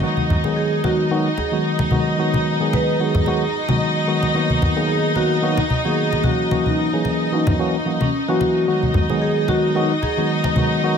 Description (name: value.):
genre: nu-disco, nu disco.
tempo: 111 BPM.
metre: 4/4.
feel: swing 55% on 16ths.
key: G# minor.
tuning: A4 = 440 Hz.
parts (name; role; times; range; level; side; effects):
tine electric piano; accompaniment; 0.0-11.0 s; D#3 to G#4; -20 LUFS; equal; medium stereo tremolo.
rich chamber violin section; sustained chords; 0.0-11.0 s; D#4 to D#5; -23 LUFS; equal; none.
congas; percussion; 0.2-10.7 s; none; -22 LUFS; left 1 dB; none.
vibraphone with medium mallets; melody; 0.6-10.2 s; C#4 to B4; -24 LUFS; right 2 dB; digital delay.
room: moderate echo chamber reverb, RT60 2.2 s.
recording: none.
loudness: -17 LUFS.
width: side -7 dB against mid.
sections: 0.0-11.0 A section.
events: none.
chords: 0.0 G#m7; 4.3 Bmaj7; 6.2 F#7; 8.7 G#m7.